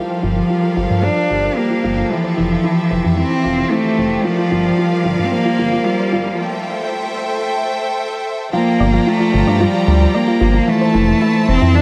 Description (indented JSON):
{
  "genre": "piano and strings electronica",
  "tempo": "112 BPM",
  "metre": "4/4",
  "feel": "straight",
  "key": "G dorian",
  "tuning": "A4 = 440 Hz",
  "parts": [
    { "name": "rich cello", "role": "melody", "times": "0.0-11.8 s", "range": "F3 to D4", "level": "-19 LUFS", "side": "equal", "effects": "none" },
    { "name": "rich studio string section", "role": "sustained chords", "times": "0.0-11.8 s", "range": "G3 to Bb5", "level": "-26 LUFS", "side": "equal", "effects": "none" },
    { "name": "soft round pluck", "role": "arpeggios", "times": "0.0-11.8 s", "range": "E4 to D5", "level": "-28 LUFS", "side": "equal", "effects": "none" },
    { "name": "felt-muted upright piano", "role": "riff", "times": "0.0-11.8 s", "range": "E3 to G4", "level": "-23 LUFS", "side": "equal", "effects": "none" },
    { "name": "dark detuned saw bass", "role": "bass", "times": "0.2-11.8 s", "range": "F1 to G2", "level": "-20 LUFS", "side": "equal", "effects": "none" }
  ],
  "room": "moderate huge ambient reverb, RT60 4.2 s",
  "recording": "high-pass filter",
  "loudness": "-16 LUFS",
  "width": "mono",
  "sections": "0.0-8.5 A section; 8.5-11.8 B section",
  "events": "build-up 0.0-8.5; break 6.4-8.5; drop 8.5-11.8",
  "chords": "0.0 Gm7; 2.1 Fmaj7; 4.2 C7sus4/G; 6.4 Am7; 8.5 Gm7; 10.7 Fmaj7",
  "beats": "0.50 1.03 1.57 | 2.10 2.64 3.18 3.71 | 4.25 4.78 5.32 5.86 | 6.39 6.93 7.46 8.00 | 8.53 9.07 9.61 10.14 | 10.68 11.21 11.75"
}